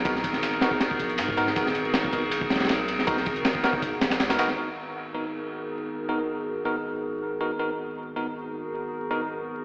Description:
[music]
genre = drum and bass, jungle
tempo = 159 BPM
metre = 4/4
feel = straight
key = G# minor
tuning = A4 = 442 Hz
[part]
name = warbly tape-like pad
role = sustained chords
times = 0.0-9.6 s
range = B3 to A#4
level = -29 LUFS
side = equal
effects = chorus, built-in reverb
[part]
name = saturated sub bass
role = bass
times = 0.0-9.6 s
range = G#1 to G#2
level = -40 LUFS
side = equal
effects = none
[part]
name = bell-like tine electric piano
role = stabs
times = 0.1-9.2 s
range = B3 to A#4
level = -30 LUFS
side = equal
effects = dub echo
[part]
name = breakbeat sampler-style drum kit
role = drums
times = 0.1-4.5 s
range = hi-hat, snare drum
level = -34 LUFS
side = equal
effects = overdrive, high-pass filter on hats, high-pass filter on snare, high-pass filter on room
[part]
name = crunchy breakbeat drum kit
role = drums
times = 0.1-4.6 s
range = kick drum, ride cymbal, snare drum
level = -27 LUFS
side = equal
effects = none
[sound]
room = wet lush hall reverb, RT60 2.3 s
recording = played on a big sound system in a bare room, large studio reverb, vinyl crackle, AM radio sound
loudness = -24 LUFS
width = side -29 dB against mid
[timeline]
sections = 0.0-4.6 A section; 4.6-9.6 B section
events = drop 0.0-4.6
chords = 0.0 G#m9

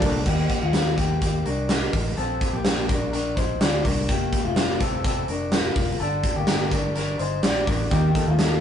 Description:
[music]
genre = jangly indie pop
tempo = 125 BPM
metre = 4/4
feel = straight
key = Bb major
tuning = A4 = 440 Hz
[part]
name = combo organ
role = accompaniment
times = 0.0-0.2, 7.9-8.6 s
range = Bb3 to A4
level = -30 LUFS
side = right 3 dB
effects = none
[part]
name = picked steel-string acoustic guitar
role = accompaniment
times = 0.0-0.3, 7.9-8.6 s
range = Bb2 to Bb4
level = -29 LUFS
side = right 3 dB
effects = none
[part]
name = electric guitar through a small old amp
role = arpeggios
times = 0.0-8.6 s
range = A3 to D5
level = -26 LUFS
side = left 3 dB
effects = none
[part]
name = fingered electric bass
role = bass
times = 0.0-8.6 s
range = F1 to Eb2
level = -27 LUFS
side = equal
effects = none
[part]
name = big rock drum kit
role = drums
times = 0.0-8.5 s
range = crash cymbal, hi-hat, kick drum, ride cymbal, snare drum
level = -24 LUFS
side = right 1 dB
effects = none
[sound]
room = moderate studio reverb, RT60 0.6 s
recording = rough rehearsal-room recording, warm saturation, nothing above 10.5 kHz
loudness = -20 LUFS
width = side -9 dB against mid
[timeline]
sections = 0.3-8.6 A section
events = none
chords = 0.0 Bbmaj7; 2.2 Bbadd9; 4.1 Fsus4; 6.0 Gmadd9; 7.9 Eb

